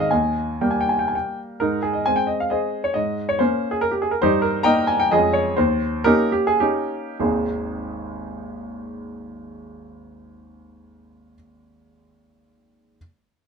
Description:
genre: classical, romantic triple-time dance for piano with dotted rhythms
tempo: 96-152 BPM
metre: 3/4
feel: rubato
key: Ab major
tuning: A4 = 440 Hz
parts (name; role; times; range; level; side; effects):
- clear baby grand piano; solo; 0.0-13.0 s; Ab1 to Bb5; -19 LUFS; equal; none
room: light reverb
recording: none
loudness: -19 LUFS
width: side -6 dB against mid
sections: 0.0-7.2 A section; 7.2-10.8 B section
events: slowing down 3.6-7.2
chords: 0.1 Eb; 1.6 Ab; 3.0 Bbm7/Ab; 4.2 Eb/G; 5.1 Db/F; 5.6 Eb7; 7.2 Ab

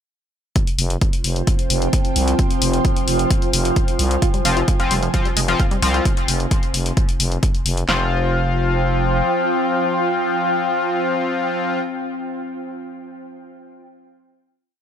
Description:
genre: driving peak-time techno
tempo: 131 BPM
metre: 4/4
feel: straight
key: F minor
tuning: A4 = 441 Hz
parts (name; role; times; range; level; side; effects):
- overtone-sweeping drone; drone; 1.3-11.8 s; F3 to C4; -26 LUFS; equal; chorus, built-in reverb, sidechain pumping
- electronic hi-hat; drums; 0.6-7.9 s; none; -24 LUFS; left 4 dB; sidechain pumping on hats
- punchy analog drum machine; drums; 0.6-8.0 s; handclaps, kick drum, snare drum; -19 LUFS; equal; none
- ethereal airy pad; texture; 1.3-11.9 s; F4 to Ab5; -26 LUFS; right 2 dB; ensemble chorus, built-in reverb, sidechain pumping
- growling FM bass; bass; 0.8-9.2 s; F1 to C2; -20 LUFS; equal; sidechain pumping
- tight sequenced synth; riff; 4.2-8.1 s; F3 to F4; -27 LUFS; equal; chorus, sidechain pumping, dub echo
- sync-sweep polysynth; stabs; 4.5-11.8 s; F3 to F4; -22 LUFS; left 3 dB; chorus, sidechain pumping, dub echo
room: light reverb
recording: none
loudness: -17 LUFS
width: side -9 dB against mid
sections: 0.6-7.9 groove; 7.9-11.6 final chord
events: none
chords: 0.6 F5

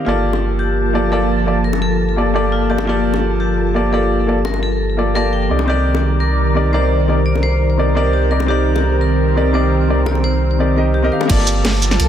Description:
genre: liquid drum and bass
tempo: 171 BPM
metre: 4/4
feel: straight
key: G minor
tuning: A4 = 440 Hz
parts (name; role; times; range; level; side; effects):
- warm baby grand piano; accompaniment; 0.0-12.1 s; Bb3 to A5; -20 LUFS; equal; ping-pong delay
- lush unison pad; sustained chords; 0.0-12.1 s; Eb3 to A5; -20 LUFS; equal; chorus, phaser, sidechain pumping
- vibraphone with hard mallets; arpeggios; 0.1-11.3 s; F4 to G5; -23 LUFS; left 2 dB; ping-pong delay
- warm sub bass; bass; 0.1-12.1 s; G1 to C2; -18 LUFS; equal; none
- bongos; percussion; 0.3-11.3 s; none; -25 LUFS; left 5 dB; none
- crunchy breakbeat drum kit; drums; 11.3-12.1 s; hi-hat, snare drum; -25 LUFS; right 1 dB; high-pass filter on hats, studio reverb, high-pass filter on snare, high-pass filter on room
- electronic kick drum; drums; 11.3-11.4 s; none; -14 LUFS; equal; studio reverb
- garage drum kit; drums; 11.3-12.1 s; crash cymbal, hi-hat, shaker, snare drum; -19 LUFS; right 1 dB; studio reverb
room: light reverb, small room ambience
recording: none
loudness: -14 LUFS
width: side -9 dB against mid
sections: 0.0-11.3 A section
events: none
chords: 0.1 Gm9; 5.5 Cm9; 11.3 Gm9

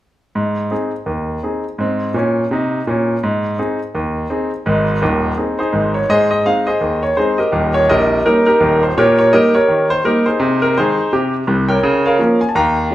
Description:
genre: jazz, stride piano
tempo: 167 BPM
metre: 4/4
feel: swing 59% on 8ths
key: Ab major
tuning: A4 = 440 Hz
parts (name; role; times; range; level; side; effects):
- clear concert grand piano; solo; 0.4-12.9 s; Bb0 to Bb5; -13 LUFS; equal; none
room: moderate large studio reverb, RT60 0.9 s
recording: band playing live in one room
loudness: -13 LUFS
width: side -14 dB against mid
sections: 0.4-6.1 A section; 6.1-12.9 B section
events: none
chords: 0.4 Ab; 7.5 Eb7; 9.0 Eb7/Bb; 10.4 Ab/C; 11.8 Bbm/Db

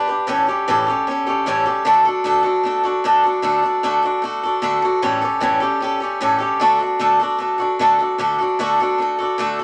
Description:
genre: rock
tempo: 152 BPM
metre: 4/4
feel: straight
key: D major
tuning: A4 = 440 Hz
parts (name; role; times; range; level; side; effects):
- picked swing-style acoustic guitar; solo; 0.0-9.6 s; A2 to B4; -18 LUFS; equal; none
room: moderate small room ambience, RT60 0.5 s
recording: none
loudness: -18 LUFS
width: mono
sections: 0.0-8.2 A section; 8.2-9.6 B section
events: none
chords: 0.3 A7; 1.9 D; 5.0 A7; 6.6 D

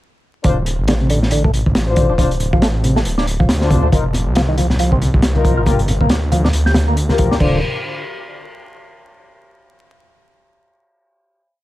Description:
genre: breakbeat, breaks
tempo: 138 BPM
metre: 4/4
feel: swing 58% on 16ths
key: D phrygian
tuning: A4 = 440 Hz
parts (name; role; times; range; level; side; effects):
- percussive tonewheel organ; riff; 0.4-7.6 s; C3 to G4; -21 LUFS; equal; overdrive, chorus vibrato, slow rotary speaker, vintage 12-bit sampler grit, digital delay
- mellow brass ensemble; stabs; 0.4-7.6 s; D4 to C5; -22 LUFS; left 5 dB; digital delay
- detuned saw bass; bass; 0.4-7.6 s; D1 to D2; -18 LUFS; equal; none
- crunchy breakbeat drum kit; drums; 0.4-7.5 s; crash cymbal, hi-hat, kick drum, snare drum; -17 LUFS; equal; none
- congas; percussion; 3.9-7.2 s; none; -24 LUFS; left 2 dB; none
room: small room ambience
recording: vinyl crackle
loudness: -13 LUFS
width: side -16 dB against mid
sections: 0.4-7.4 drop; 7.4-9.1 final chord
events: drop 0.4-7.4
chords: 0.4 Dm7; 3.9 F7sus4; 5.7 Gm7; 7.4 N.C.

